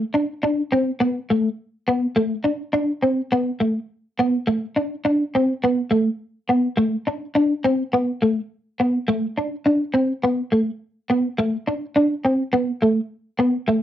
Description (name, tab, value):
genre	highlife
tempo	104 BPM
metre	4/4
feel	straight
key	unclear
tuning	A4 = 440 Hz
part	clean electric guitar	solo	0.0-13.8 s	A3 to D4	-18 LUFS	equal	ensemble chorus, cassette tape
room	wet studio reverb, RT60 0.5 s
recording	home recording on cassette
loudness	-19 LUFS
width	side -11 dB against mid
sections	0.0-12.5 A section; 12.5-13.8 B section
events	none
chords	none